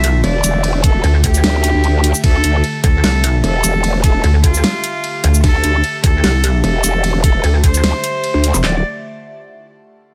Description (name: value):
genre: heavy wobble dubstep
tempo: 150 BPM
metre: 4/4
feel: half-time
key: D minor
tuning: A4 = 440 Hz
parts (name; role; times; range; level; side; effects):
- rich cello; melody; 0.0-8.8 s; F4 to E5; -23 LUFS; equal; digital delay
- evolving wavetable pad; sustained chords; 0.0-8.8 s; D3 to E5; -29 LUFS; equal; phaser, built-in reverb, sidechain pumping
- pulsing pluck wobble bass; bass; 0.0-8.6 s; F1 to D2; -15 LUFS; equal; chorus, overdrive
- dubstep drum kit; drums; 0.0-8.6 s; hi-hat, ride cymbal, shaker, snare drum; -23 LUFS; equal; studio reverb
- growl bass; bass; 0.2-8.8 s; D1 to D2; -17 LUFS; equal; chorus, overdrive
- dubstep drum kit; drums; 0.8-8.7 s; handclaps, kick drum, snare drum; -16 LUFS; equal; studio reverb
room: little or no reverb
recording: none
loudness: -14 LUFS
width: mono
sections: 0.0-8.6 A section; 8.6-10.1 B section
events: drop 0.0-8.6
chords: 0.0 Dmadd9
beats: 0.24 | 0.64 1.04 1.44 1.84 | 2.24 2.64 3.04 3.44 | 3.84 4.24 4.64 5.04 | 5.44 5.84 6.24 6.64 | 7.04 7.44 7.84 8.24 | 8.64